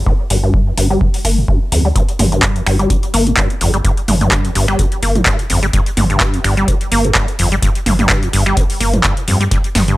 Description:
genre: acid house.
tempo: 127 BPM.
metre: 4/4.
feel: swing 55% on 16ths.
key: G minor.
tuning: A4 = 440 Hz.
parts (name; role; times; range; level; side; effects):
round analog bass; bass; 0.0-10.0 s; G1 to G2; -17 LUFS; equal; sidechain pumping.
acid bass, saw; riff; 0.1-10.0 s; F2 to Bb3; -17 LUFS; equal; overdrive, analog chorus, sidechain pumping, tape echo.
electronic kick drum; drums; 0.1-9.6 s; none; -16 LUFS; equal; none.
electro analog drum machine; drums; 0.3-10.0 s; finger snaps, handclaps, hi-hat, toms; -17 LUFS; equal; none.
breakbeat sampler-style drum kit; drums; 9.5-9.9 s; hi-hat, snare drum; -24 LUFS; equal; high-pass filter on hats, high-pass filter on snare, high-pass filter on room.
room: digital ambience.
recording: none.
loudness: -12 LUFS.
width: side -18 dB against mid.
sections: 0.0-10.0 A section.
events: filter sweep on acid bass 0.0-10.0.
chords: none.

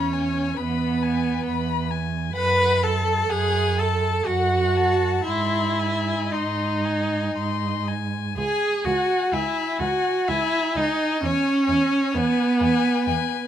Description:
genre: classical, slow romantic movement for string quartet.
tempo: 57-68 BPM.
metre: 3/4.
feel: rubato.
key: C# minor.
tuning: A4 = 439 Hz.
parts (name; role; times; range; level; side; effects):
warm violin; melody; 0.0-13.5 s; F#5 to B#5; -29 LUFS; left 14 dB; none.
rich violin; second line; 0.0-13.5 s; B4 to B5; -29 LUFS; left 5 dB; none.
rich viola; accompaniment; 0.0-13.5 s; B3 to B4; -22 LUFS; right 2 dB; none.
warm cello; bass; 0.0-13.1 s; C#2 to G#2; -27 LUFS; right 3 dB; none.
room: light reverb.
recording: close, detailed microphones.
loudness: -20 LUFS.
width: side -10 dB against mid.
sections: 0.0-13.5 A section.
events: none.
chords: 0.0 E; 2.4 F#m; 5.3 G#; 8.4 C#5; 11.2 E.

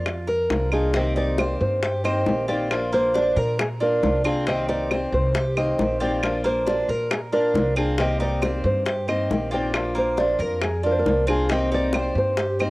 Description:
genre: latin, Cuban son and guajira.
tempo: 136 BPM.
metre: 4/4.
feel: straight.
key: C minor.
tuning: A4 = 441 Hz.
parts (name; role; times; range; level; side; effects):
nylon-string guitar; melody; 0.0-12.7 s; Ab4 to Eb5; -24 LUFS; equal; none.
fingerpicked steel-string acoustic guitar; accompaniment; 0.0-12.7 s; C3 to G4; -27 LUFS; left 1 dB; none.
Cuban tres; arpeggios; 0.0-12.7 s; Bb3 to C5; -28 LUFS; right 2 dB; none.
upright bass; bass; 0.0-12.7 s; Bb1 to Bb2; -27 LUFS; equal; none.
bongos; percussion; 0.1-12.7 s; none; -28 LUFS; left 3 dB; none.
claves; percussion; 0.1-12.7 s; none; -30 LUFS; right 3 dB; none.
room: small room ambience.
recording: home recording on cassette.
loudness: -20 LUFS.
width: side -20 dB against mid.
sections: 0.9-12.7 A section.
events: none.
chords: 0.0 Bb; 0.9 Cm7; 2.7 Bb; 4.5 Cm7; 6.2 Bb; 8.0 Cm7; 9.7 Bb; 11.5 Cm7.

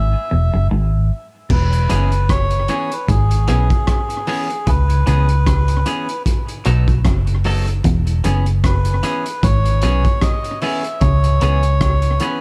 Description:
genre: roots reggae.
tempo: 76 BPM.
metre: 4/4.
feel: swing 56% on 16ths.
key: E major.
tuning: A4 = 440 Hz.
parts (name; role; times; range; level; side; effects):
melodica; melody; 0.0-12.4 s; G#4 to E5; -25 LUFS; equal; tape echo.
semi-hollow electric guitar; riff; 0.0-11.7 s; E2 to C#3; -26 LUFS; equal; phaser.
vintage muted fingered electric bass; bass; 0.0-12.2 s; E1 to C#2; -18 LUFS; equal; none.
crunchy breakbeat drum kit; drums; 1.5-12.4 s; crash cymbal, hi-hat, kick drum, rim click; -23 LUFS; equal; none.
semi-hollow electric guitar; accompaniment; 1.9-12.4 s; E3 to A4; -28 LUFS; equal; tape echo.
room: small room ambience.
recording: dark, warm production.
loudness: -17 LUFS.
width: mono.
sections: 0.0-1.5 A section; 1.5-12.4 B section.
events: break 0.0-1.5.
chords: 0.0 E; 1.5 E6; 4.7 C#m7; 6.3 B7; 7.8 E6; 11.0 C#m7.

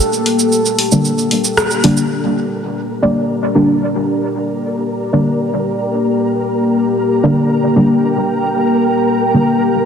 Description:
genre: dub techno.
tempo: 114 BPM.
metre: 4/4.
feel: straight.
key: G minor.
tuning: A4 = 440 Hz.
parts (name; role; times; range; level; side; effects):
deep dark ambient pad; sustained chords; 0.0-9.9 s; Bb3 to G5; -16 LUFS; left 1 dB; chorus, built-in reverb.
deep mellow chord stab; stabs; 0.0-9.5 s; D3 to D4; -16 LUFS; equal; chorus, phaser, dub echo.
punchy analog drum machine; drums; 0.0-2.1 s; cabasa, hi-hat, rim click; -18 LUFS; right 1 dB; dub echo.
flickering grainy texture; texture; 2.5-9.9 s; Bb4; -23 LUFS; right 1 dB; built-in reverb.
room: wet lush hall reverb, RT60 2.5 s.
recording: dense, heavily limited modern master.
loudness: -12 LUFS.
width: side -7 dB against mid.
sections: 0.0-2.1 A section; 2.1-9.9 B section.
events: band accent 1.6; filter sweep on synth stab 2.1-9.9.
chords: 0.0 Gm.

